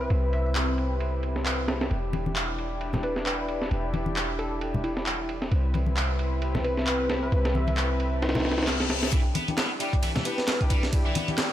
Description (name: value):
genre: breakbeat, breaks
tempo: 133 BPM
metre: 4/4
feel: swing 58% on 16ths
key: E minor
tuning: A4 = 440 Hz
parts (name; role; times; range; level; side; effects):
- glassy wavetable pluck; melody; 0.0-10.7 s; E4 to E5; -35 LUFS; equal; chorus, old record sound, dub echo
- lush unison pad; sustained chords; 0.0-11.5 s; C4 to E5; -36 LUFS; equal; chorus, phaser, vintage 12-bit sampler grit, sidechain pumping
- warm studio string section; stabs; 0.0-11.3 s; C4 to B4; -33 LUFS; left 2 dB; low-pass filter, dub echo
- warm 808-style bass; bass; 0.0-11.5 s; E1 to E2; -28 LUFS; equal; high-pass filter
- breakbeat sampler-style drum kit; drums; 0.1-11.5 s; kick drum, ride cymbal, snare drum; -30 LUFS; equal; low-pass filter on snare, low-pass filter on cymbals, low-pass filter on kick
- punchy analog drum machine; drums; 0.6-11.5 s; handclaps, hi-hat; -32 LUFS; equal; none
- congas; percussion; 2.1-11.4 s; none; -30 LUFS; left 3 dB; none
- reverse cymbal and riser; sound effects; 8.4-11.5 s; none; -36 LUFS; left 4 dB; none
- tight distorted guitar; riff; 9.1-11.3 s; E3 to B3; -33 LUFS; equal; distortion, tube saturation, low-pass filter, dub echo
room: light reverb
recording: none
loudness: -24 LUFS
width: side -12 dB against mid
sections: 0.0-9.1 A section; 9.1-11.5 B section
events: filter sweep on analog synth pad 0.0-9.1, 9.1-11.5; reverse cymbal 8.4-9.1; build-up 9.1-11.5; filter sweep on string section 9.1-11.5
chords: 0.0 Cmaj7; 1.9 Em7; 5.5 Cmaj7; 9.1 Em7